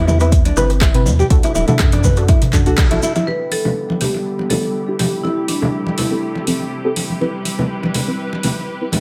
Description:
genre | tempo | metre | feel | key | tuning
afro house | 122 BPM | 4/4 | swing 53% on 16ths | E minor | A4 = 438 Hz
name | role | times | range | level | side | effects
nylon-string guitar | arpeggios | 0.0-3.3 s | D4 to B4 | -23 LUFS | equal | sidechain pumping, tape echo
deep mellow chord stab | stabs | 0.0-8.9 s | C4 to B4 | -26 LUFS | equal | chorus, sidechain pumping, tape echo
warm sub bass | bass | 0.0-3.0 s | D1 to F#2 | -19 LUFS | equal | sidechain pumping
deep house drum kit | drums | 0.1-9.0 s | handclaps, hi-hat, rim click, toms | -26 LUFS | equal | overdrive, small room reverb
congas | percussion | 0.1-9.0 s | none | -25 LUFS | equal | none
shekere | percussion | 0.1-3.2 s | none | -32 LUFS | equal | none
darbuka | percussion | 0.2-2.5 s | none | -26 LUFS | equal | none
electronic kick drum | drums | 0.3-2.9 s | none | -16 LUFS | equal | overdrive, small room reverb
marimba with medium hard mallets | melody | 3.3-6.4 s | D4 to B4 | -25 LUFS | equal | tape echo
clear symphonic string section | sustained chords | 3.3-9.0 s | C3 to B4 | -27 LUFS | equal | sidechain pumping, low-pass filter
room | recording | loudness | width
light reverb, studio ambience | none | -17 LUFS | mono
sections
0.0-3.3 A section; 3.3-9.0 B section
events
band accent 2.8; filter sweep on string section 3.3-9.0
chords
0.0 Cmaj7; 1.3 D; 3.3 Em7; 5.2 Am7; 7.2 Cmaj7

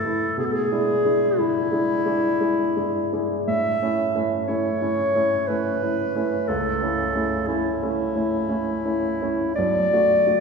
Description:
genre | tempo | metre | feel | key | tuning
classical, romantic duo for clarinet and grand piano | 60 BPM | 3/4 | rubato | A major | A4 = 441 Hz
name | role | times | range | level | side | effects
mellow clarinet | melody | 0.0-10.4 s | E4 to E5 | -22 LUFS | left 1 dB | none
warm baby grand piano | accompaniment | 0.0-10.4 s | B1 to F#4 | -24 LUFS | right 1 dB | none
room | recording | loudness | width
wet scoring stage reverb, RT60 1.9 s | recorded in a church or concert hall | -20 LUFS | side -5 dB against mid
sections
0.0-10.4 A section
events
none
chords
0.4 E7/B; 3.5 A; 6.5 A/C#; 9.6 Bm7

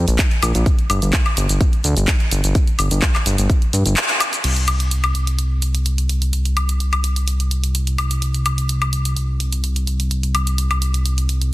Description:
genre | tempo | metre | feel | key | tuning
progressive house | 127 BPM | 4/4 | straight | unclear | A4 = 439 Hz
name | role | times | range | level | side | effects
fat analog bass | bass | 0.0-11.5 s | G1 to G2 | -18 LUFS | equal | sidechain pumping
pop drum kit | drums | 0.1-11.5 s | crash cymbal, handclaps, hi-hat, shaker, woodblock | -22 LUFS | left 1 dB | small room reverb
electronic kick drum | drums | 0.2-3.6 s | none | -16 LUFS | equal | small room reverb
room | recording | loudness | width
light reverb | dense, heavily limited modern master | -16 LUFS | side -17 dB against mid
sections
0.0-4.4 A section; 4.4-11.5 B section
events
band accent 4.0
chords
none

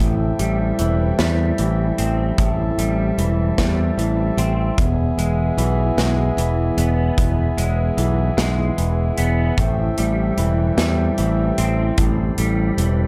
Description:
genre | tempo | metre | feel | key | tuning
post-rock | 50 BPM (dotted quarters) | 6/8 | straight | A minor | A4 = 440 Hz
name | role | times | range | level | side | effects
hand-pumped harmonium | sustained chords | 0.0-13.1 s | B3 to A5 | -28 LUFS | equal | none
semi-hollow electric guitar | arpeggios | 0.0-13.1 s | E2 to C4 | -26 LUFS | equal | ensemble chorus, slapback echo
modern bright picked electric bass | bass | 0.0-13.1 s | E1 to E2 | -22 LUFS | equal | none
big rock drum kit | drums | 0.4-13.0 s | hi-hat, kick drum, snare drum | -25 LUFS | equal | none
room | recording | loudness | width
moderate small room reverb, RT60 0.6 s | dark, warm production | -19 LUFS | mono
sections
0.0-13.1 A section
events
none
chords
0.0 Am7; 4.8 E; 9.6 Am7

